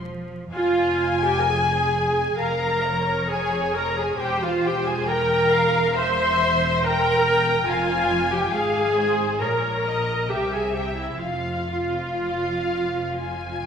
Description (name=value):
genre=classical, slow romantic movement for string orchestra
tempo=67 BPM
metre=4/4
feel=uneven beats, rubato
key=F minor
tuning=A4 = 440 Hz
part: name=muted studio cello section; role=bass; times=0.0-13.7 s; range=E2 to F3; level=-33 LUFS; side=right 2 dB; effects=none
part: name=muted studio double bass section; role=bass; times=0.0-13.7 s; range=E1 to C2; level=-31 LUFS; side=right 2 dB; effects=none
part: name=muted studio violin section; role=melody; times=0.5-13.7 s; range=C5 to Ab5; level=-27 LUFS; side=left 4 dB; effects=none
part: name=muted studio violin section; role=second line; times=0.5-13.7 s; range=E5 to C6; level=-27 LUFS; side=left 2 dB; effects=none
part: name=muted studio viola section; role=accompaniment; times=0.5-13.7 s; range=E4 to C5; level=-23 LUFS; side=right 1 dB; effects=none
room=wet concert hall reverb, RT60 1.9 s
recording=vinyl crackle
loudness=-20 LUFS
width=side -7 dB against mid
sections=0.0-13.7 A section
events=none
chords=0.0 N.C.; 0.5 Fm; 4.2 C7/E; 7.7 Fm; 9.4 Bbm; 10.3 C; 11.2 Fm